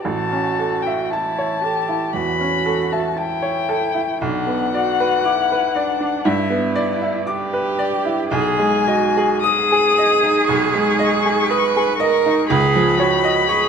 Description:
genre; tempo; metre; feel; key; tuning
classical, slow romantic movement for piano trio; 58 BPM; 4/4; uneven beats, rubato; unclear; A4 = 441 Hz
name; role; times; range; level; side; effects
muted violin; melody; 0.0-13.7 s; E5 to D#6; -21 LUFS; left 7 dB; none
muted cello; second line; 0.0-13.7 s; D4 to B4; -21 LUFS; right 4 dB; none
bright baby grand piano; accompaniment; 0.0-13.7 s; A1 to D#6; -20 LUFS; right 1 dB; none
room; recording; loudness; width
moderate recital hall reverb, RT60 1.7 s; close, detailed microphones; -16 LUFS; side -6 dB against mid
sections
0.0-13.7 A section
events
none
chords
0.0 A; 4.2 Bm; 6.2 Em7/G; 8.3 G#m/B; 12.5 C#9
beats
| 0.05 1.12 2.15 3.18 | 4.22 5.25 6.25 7.26 | 8.30 9.44 10.48 11.51 | 12.51 13.50

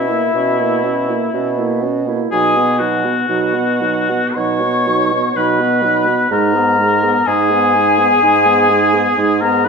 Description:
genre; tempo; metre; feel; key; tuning
classical, slow romantic movement for wind quintet; 62 BPM; 4/4; rubato; B major; A4 = 438 Hz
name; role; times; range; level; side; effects
silver concert flute; melody; 0.0-9.7 s; E5 to C#6; -18 LUFS; left 5 dB; none
warm oboe; second line; 0.0-9.7 s; E4 to C#5; -17 LUFS; left 1 dB; none
mellow French horn; accompaniment; 0.0-9.7 s; F#3 to C#4; -22 LUFS; right 1 dB; none
warm clarinet; accompaniment; 0.0-9.7 s; D#4 to G#4; -22 LUFS; right 10 dB; none
warm bassoon; bass; 0.0-9.7 s; G#2 to B2; -20 LUFS; right 2 dB; none
room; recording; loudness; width
moderate recital hall reverb, RT60 1.7 s; minimal, uncompressed stereo recording; -12 LUFS; side -5 dB against mid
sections
0.0-9.7 A section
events
none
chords
0.0 F#7/B; 2.3 B; 6.3 G#m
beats
0.34 1.34 | 2.32 3.30 4.36 5.36 | 6.31 7.27 8.23 9.18

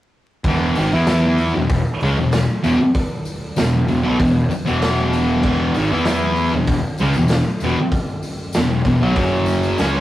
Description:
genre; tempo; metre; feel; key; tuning
garage rock duo or trio; 96 BPM; 4/4; straight; E major; A4 = 440 Hz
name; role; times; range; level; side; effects
fuzz picked electric bass; bass; 0.4-10.0 s; E1 to E2; -23 LUFS; equal; overdrive
raw garage drum kit; drums; 0.4-9.9 s; crash cymbal, hi-hat, kick drum, snare drum; -22 LUFS; equal; none
thick fuzz guitar; riff; 0.5-10.0 s; E2 to E4; -17 LUFS; equal; distortion
tambourine; percussion; 0.8-10.0 s; none; -40 LUFS; left 2 dB; none
room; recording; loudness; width
wet studio reverb, RT60 0.6 s; rough rehearsal-room recording, warm saturation, vinyl crackle; -15 LUFS; side -14 dB against mid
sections
0.4-10.0 A section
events
none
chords
0.4 E5; 9.2 F#5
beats
| 0.45 1.07 1.69 2.32 | 2.94 3.57 4.19 4.81 | 5.44 6.06 6.68 7.31 | 7.93 8.55 9.18 9.80

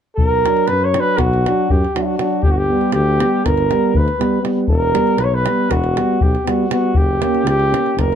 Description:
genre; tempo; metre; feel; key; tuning
balkan folk, Balkan brass band; 240 BPM (eighths); 9/8; straight; B harmonic minor; A4 = 442 Hz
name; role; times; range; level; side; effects
mellow flugelhorn; melody; 0.2-8.2 s; E4 to C#5; -18 LUFS; equal; plate reverb
mellow tuba; bass; 0.2-8.2 s; E1 to F#2; -20 LUFS; equal; none
davul; percussion; 0.2-8.2 s; none; -19 LUFS; left 1 dB; none
mellow euphonium; accompaniment; 0.4-7.9 s; F#3 to A#3; -23 LUFS; right 8 dB; none
mellow French horn; accompaniment; 0.5-7.9 s; B3 to D4; -22 LUFS; left 4 dB; none
room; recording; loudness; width
light reverb; dark, warm production; -14 LUFS; side -8 dB against mid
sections
0.2-8.2 A section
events
none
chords
0.2 Bm; 2.4 G; 4.7 Em; 6.9 F#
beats
| 0.17 0.42 0.67 0.92 1.17 1.42 1.67 1.92 2.17 | 2.42 2.67 2.92 3.17 3.42 3.67 3.92 4.17 4.42 | 4.67 4.92 5.18 5.43 5.68 5.93 6.18 6.43 6.68 | 6.93 7.18 7.44 7.69 7.94

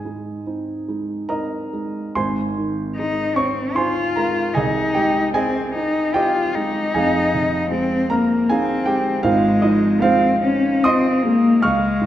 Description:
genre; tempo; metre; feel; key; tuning
classical, romantic duo for cello and grand piano; 76 BPM; 3/4; uneven beats, rubato; Ab major; A4 = 440 Hz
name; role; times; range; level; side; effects
dark grand piano; accompaniment; 0.0-12.1 s; F1 to F6; -20 LUFS; right 2 dB; none
warm cello; melody; 3.0-12.1 s; Ab3 to F4; -19 LUFS; left 2 dB; none
room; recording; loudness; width
wet recital hall reverb, RT60 1.4 s; none; -17 LUFS; side -12 dB against mid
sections
0.0-2.2 A section; 2.2-12.1 B section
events
none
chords
0.0 Ab; 4.5 Ab/C; 6.9 Fm7; 9.3 Fm/Ab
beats
0.46 1.30 | 2.15 2.96 3.75 | 4.54 5.34 6.14 | 6.94 7.72 8.50 | 9.26 10.02 10.85 | 11.63

